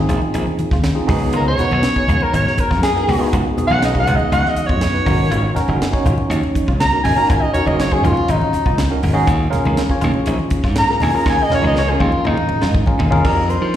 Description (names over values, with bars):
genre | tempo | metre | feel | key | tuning
electric jazz fusion | 121 BPM | 4/4 | straight | unclear | A4 = 440 Hz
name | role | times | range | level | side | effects
tine electric piano | accompaniment | 0.0-13.8 s | Cb4 to Db5 | -21 LUFS | right 1 dB | medium stereo tremolo, phaser, slapback echo
glassy slap bass | bass | 0.0-13.8 s | Gb1 to F3 | -18 LUFS | equal | none
clean electric guitar | stabs | 0.1-13.2 s | Eb4 to F4 | -30 LUFS | left 2 dB | analog chorus, slapback echo
tight funk drum kit | drums | 0.1-13.8 s | crash cymbal, hi-hat, kick drum, snare drum, toms | -21 LUFS | equal | none
congas | percussion | 0.1-13.2 s | none | -23 LUFS | equal | slapback echo
breathy soprano saxophone | melody | 1.4-13.8 s | Eb4 to Bb5 | -18 LUFS | equal | slapback echo
room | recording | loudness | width
moderate club reverb, RT60 0.5 s | live gig heard through the venue's PA, recital hall reverb | -14 LUFS | side -11 dB against mid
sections
0.0-13.2 A section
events
soprano saxophone solo 0.0-13.2; drum fill 11.3-13.2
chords
0.0 Bb9sus4; 1.1 Db9sus4; 5.1 Ab9sus4; 9.3 Eb9sus4; 13.2 F13sus4